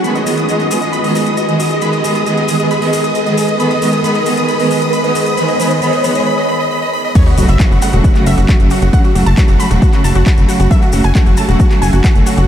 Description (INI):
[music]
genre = uplifting trance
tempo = 135 BPM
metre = 4/4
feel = straight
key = F# dorian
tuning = A4 = 442 Hz
[part]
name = big supersaw lead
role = melody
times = 0.0-12.4 s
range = F#4 to D#6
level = -18 LUFS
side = equal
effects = sidechain pumping, low-pass filter, tape echo
[part]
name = clear symphonic string section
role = sustained chords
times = 0.0-12.3 s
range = C#3 to G#4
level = -16 LUFS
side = right 1 dB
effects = sidechain pumping
[part]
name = house drum kit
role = drums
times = 0.0-12.5 s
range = crash cymbal, handclaps, hi-hat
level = -26 LUFS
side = equal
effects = overdrive
[part]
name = maracas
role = percussion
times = 0.0-12.5 s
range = none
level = -30 LUFS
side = left 5 dB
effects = none
[part]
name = riser and sub drop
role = sound effects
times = 0.0-8.9 s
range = none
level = -20 LUFS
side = equal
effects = none
[part]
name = wide unison pluck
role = second line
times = 7.2-12.4 s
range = F#4 to B5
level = -22 LUFS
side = right 1 dB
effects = phaser, sidechain pumping, tape echo
[part]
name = electronic kick drum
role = drums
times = 7.2-12.1 s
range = none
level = -11 LUFS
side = equal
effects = overdrive
[part]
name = tight sequencer bass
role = bass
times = 7.4-12.5 s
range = E1 to F#1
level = -12 LUFS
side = equal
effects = sidechain pumping
[sound]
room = moderate huge ambient reverb, RT60 7.6 s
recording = dreamy mix soaked in reverb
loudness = -10 LUFS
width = side -10 dB against mid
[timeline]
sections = 0.0-7.2 A section; 7.2-12.5 B section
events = build-up 0.0-7.2; riser 0.0-6.3; break 6.3-7.2; drop 7.2-12.5; impact 7.2-8.9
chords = 0.0 G#m; 7.2 F#m